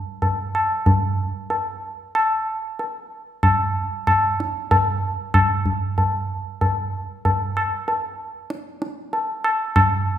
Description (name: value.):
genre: indian classical.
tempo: 94 BPM.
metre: 5/4.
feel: straight.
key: none.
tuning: none.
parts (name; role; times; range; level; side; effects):
tabla; percussion; 0.2-10.0 s; none; -19 LUFS; equal; none.
room: wet recital hall reverb, RT60 1.6 s.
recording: recorded in a church or concert hall.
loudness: -19 LUFS.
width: side -11 dB against mid.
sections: 0.0-10.2 A section.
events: none.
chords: none.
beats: 0.22 0.86 | 1.51 2.15 2.79 3.43 4.07 | 4.71 5.35 5.98 6.62 7.25 | 7.88 8.52 9.14 9.77.